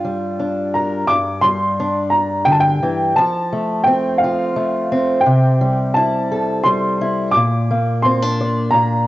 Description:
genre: folk.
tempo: 86 BPM.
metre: 3/4.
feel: straight.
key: G dorian.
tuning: A4 = 440 Hz.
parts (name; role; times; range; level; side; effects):
dark upright piano; melody; 0.0-9.1 s; F5 to D6; -17 LUFS; equal; cassette tape.
fingerpicked acoustic archtop guitar; accompaniment; 0.0-9.1 s; G2 to D5; -18 LUFS; equal; cassette tape.
room: light reverb.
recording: home recording on cassette, nothing above 7.8 kHz.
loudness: -15 LUFS.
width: side -16 dB against mid.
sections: 0.0-1.1 A section; 1.1-9.1 B section.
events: none.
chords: 0.0 Gm7; 1.1 G5; 3.2 F; 5.3 C6; 7.4 Bb.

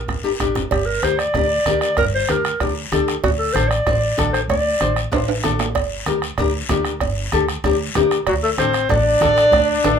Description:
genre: latin, cumbia.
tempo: 191 BPM.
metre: 4/4.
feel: straight.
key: G harmonic minor.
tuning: A4 = 444 Hz.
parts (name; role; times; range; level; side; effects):
mellow clarinet; melody; 0.0-5.1, 8.3-10.0 s; F#4 to D5; -18 LUFS; equal; none.
upright bass; bass; 0.0-10.0 s; G1 to D2; -25 LUFS; right 1 dB; none.
bombo; percussion; 0.1-10.0 s; none; -25 LUFS; right 3 dB; none.
congas; percussion; 0.1-10.0 s; none; -28 LUFS; right 1 dB; none.
guiro; percussion; 0.1-10.0 s; none; -31 LUFS; left 6 dB; none.
nylon-string guitar; accompaniment; 0.2-10.0 s; D4 to C5; -22 LUFS; left 5 dB; none.
cowbell and timbales; percussion; 0.7-9.9 s; none; -25 LUFS; right 7 dB; none.
mellow trumpet; second line; 8.3-10.0 s; F#3 to D4; -22 LUFS; left 6 dB; none.
room: moderate small room ambience, RT60 0.5 s.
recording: minimal, uncompressed stereo recording.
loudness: -16 LUFS.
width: side -7 dB against mid.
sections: 0.7-10.0 A section.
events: drum fill 0.0-0.7, 5.1-5.8.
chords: 0.0 Gm; 3.2 D7; 5.8 Gm; 8.3 D7.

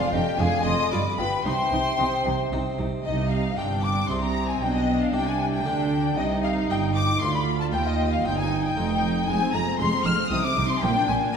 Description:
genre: classical, baroque-style concerto movement with solo episodes.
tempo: 115 BPM.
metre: 3/4.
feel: straight.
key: C minor.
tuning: A4 = 440 Hz.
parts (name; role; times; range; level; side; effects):
mellow hollow concert flute; melody; 0.0-11.4 s; D5 to F6; -28 LUFS; left 3 dB; none.
rich chamber violin section; melody; 0.0-11.2 s; Eb5 to F6; -30 LUFS; left 4 dB; none.
rich chamber violin section; second line; 0.0-11.4 s; F4 to F6; -32 LUFS; left 2 dB; none.
harpsichord; accompaniment; 0.0-11.3 s; D2 to C5; -32 LUFS; right 1 dB; none.
rich studio viola section; accompaniment; 0.1-11.3 s; Ab3 to F4; -30 LUFS; equal; none.
warm chamber cello section; bass; 0.1-11.2 s; D2 to D3; -29 LUFS; right 2 dB; none.
warm chamber double bass section; bass; 0.1-11.2 s; F1 to Eb2; -28 LUFS; right 3 dB; none.
room: wet scoring stage reverb, RT60 1.4 s.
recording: dark, warm production.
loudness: -21 LUFS.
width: side -6 dB against mid.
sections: 0.0-3.1 A section; 3.1-11.4 A section.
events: none.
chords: 0.0 Ddim/F; 0.9 G7; 1.5 Cm; 4.1 Bb9/C; 4.6 G/B; 6.2 Cm; 7.2 Bdim/D; 7.7 Cm; 9.3 Fm; 10.3 Cm; 10.8 Bb6.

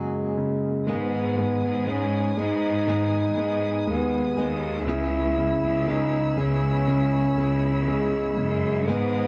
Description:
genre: pop ballad.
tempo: 60 BPM.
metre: 4/4.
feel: straight.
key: unclear.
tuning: A4 = 438 Hz.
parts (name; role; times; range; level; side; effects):
mellow trombone; melody; 0.0-9.3 s; G#3 to E4; -28 LUFS; equal; slapback echo.
clear concert grand piano; accompaniment; 0.0-9.3 s; F#2 to G#3; -30 LUFS; equal; none.
direct-recorded clean electric guitar; arpeggios; 0.0-9.3 s; G#2 to G#4; -37 LUFS; equal; none.
muted studio string section; sustained chords; 0.9-9.3 s; B4 to E6; -39 LUFS; equal; none.
bright studio cello section; bass; 0.9-9.3 s; C#2 to G#2; -30 LUFS; equal; none.
room: small room ambience.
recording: dry, close 1970s-style studio recording.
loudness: -24 LUFS.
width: mono.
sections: 0.9-9.3 A section.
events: none.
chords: 0.0 F#add9; 0.9 G#m; 4.9 C#m7.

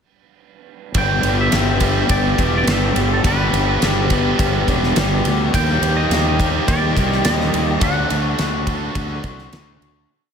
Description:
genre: rock, shoegaze and dream pop.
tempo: 105 BPM.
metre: 4/4.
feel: straight.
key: G major.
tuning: A4 = 440 Hz.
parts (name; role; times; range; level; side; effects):
biting overdriven guitar; riff; 0.9-10.1 s; D3 to B4; -23 LUFS; right 8 dB; reverse reverb.
overdriven electric guitar; riff; 0.9-10.1 s; G2 to G4; -22 LUFS; left 7 dB; wide subtle chorus.
fuzz fingered electric bass; bass; 0.9-10.0 s; E1 to Eb2; -21 LUFS; equal; overdrive.
huge arena drum kit; drums; 0.9-9.9 s; kick drum, ride cymbal, snare drum; -21 LUFS; equal; none.
twangy electric guitar; melody; 1.0-9.5 s; A4 to G5; -24 LUFS; equal; wide subtle chorus, ping-pong delay.
room: moderate huge ambient reverb, RT60 8.8 s.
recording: dreamy mix soaked in reverb.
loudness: -15 LUFS.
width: side -7 dB against mid.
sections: 1.0-10.1 verse.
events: fade-out 7.8-10.1.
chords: 1.0 G6; 5.5 Eb; 7.8 D.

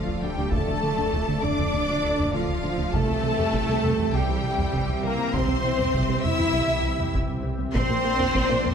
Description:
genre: cinematic, hybrid orchestral and electronic film score.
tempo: 100 BPM.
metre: 4/4.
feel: straight.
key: unclear.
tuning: A4 = 440 Hz.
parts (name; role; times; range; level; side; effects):
warm symphonic violin section; melody; 0.0-8.7 s; F5 to E6; -32 LUFS; left 2 dB; none.
warm symphonic violin section; second line; 0.0-8.7 s; F4 to E5; -32 LUFS; left 4 dB; none.
warm symphonic viola section; accompaniment; 0.0-8.7 s; F4 to E5; -31 LUFS; right 2 dB; none.
warm French horn section; sustained chords; 0.0-8.7 s; F3 to E4; -31 LUFS; left 4 dB; none.
warm analog pad; sustained chords; 0.0-8.7 s; E3 to E5; -34 LUFS; equal; chorus.
thumb-piano-like synth pluck; arpeggios; 0.0-8.7 s; C3 to Bb4; -35 LUFS; left 3 dB; chorus.
plucky analog bass; riff; 0.0-8.7 s; C2 to Bb3; -30 LUFS; right 2 dB; none.
dark detuned saw bass; bass; 0.0-8.7 s; D1 to C2; -34 LUFS; equal; none.
rich symphonic cello section; bass; 0.0-8.7 s; F3 to E4; -30 LUFS; right 3 dB; none.
warm symphonic double bass section; bass; 0.2-8.7 s; Bb1 to D2; -33 LUFS; right 4 dB; none.
taiko ensemble; drums; 0.5-8.7 s; none; -31 LUFS; equal; none.
room: wet scoring stage reverb, RT60 1.9 s.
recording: none.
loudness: -22 LUFS.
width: side -7 dB against mid.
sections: 0.0-8.7 A section.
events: none.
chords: 0.0 Dm; 2.9 C; 7.7 Bb.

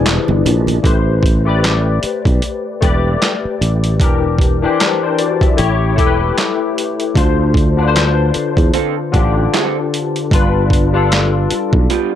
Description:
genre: R&B, neo-soul.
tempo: 76 BPM.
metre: 4/4.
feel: swing 57% on 16ths.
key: A minor.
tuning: A4 = 440 Hz.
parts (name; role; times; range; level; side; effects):
barky tine electric piano; accompaniment; 0.0-12.2 s; D3 to E5; -17 LUFS; left 5 dB; overdrive, ensemble chorus, plate reverb.
bright tonewheel organ; sustained chords; 0.0-0.8 s; B#2 to D4; -26 LUFS; right 6 dB; fast rotary speaker, chorus vibrato.
sustaining fretless electric bass; bass; 0.0-11.9 s; E1 to E2; -15 LUFS; right 1 dB; none.
boom bap sampler-style drum kit; drums; 0.1-12.1 s; handclaps, hi-hat, kick drum, snare drum; -16 LUFS; right 1 dB; none.
congas; percussion; 0.1-0.8 s; none; -24 LUFS; right 9 dB; none.
electric guitar through a small old amp; second line; 8.7-12.1 s; B3 to A4; -18 LUFS; right 14 dB; none.
room: light reverb.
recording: none.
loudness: -12 LUFS.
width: side -10 dB against mid.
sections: 0.8-12.2 A section.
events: none.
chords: 0.0 E7alt; 0.8 Am9; 4.0 Em7b5; 5.6 A7; 7.2 Dm7; 10.3 G7.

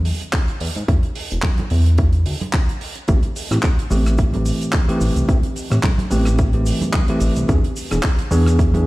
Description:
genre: nu-disco, nu disco.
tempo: 109 BPM.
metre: 4/4.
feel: swing 56% on 16ths.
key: A minor.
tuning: A4 = 440 Hz.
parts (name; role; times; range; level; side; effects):
chorused synth bass; bass; 0.0-8.9 s; E1 to A2; -18 LUFS; equal; none.
damped 70s drum kit; drums; 0.1-8.8 s; handclaps, hi-hat, rim click, shaker; -27 LUFS; right 1 dB; none.
electronic kick drum; drums; 0.3-8.7 s; none; -17 LUFS; equal; none.
congas; percussion; 1.4-8.8 s; none; -27 LUFS; right 2 dB; none.
bell-like tine electric piano; accompaniment; 3.1-8.9 s; E3 to G#4; -21 LUFS; equal; sidechain pumping, analog delay.
room: small room ambience.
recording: played on a big sound system in a bare room, stone room reverb.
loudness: -16 LUFS.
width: side -19 dB against mid.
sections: 0.0-8.9 A section.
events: none.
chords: 0.0 N.C.; 3.1 Am7; 7.5 E7.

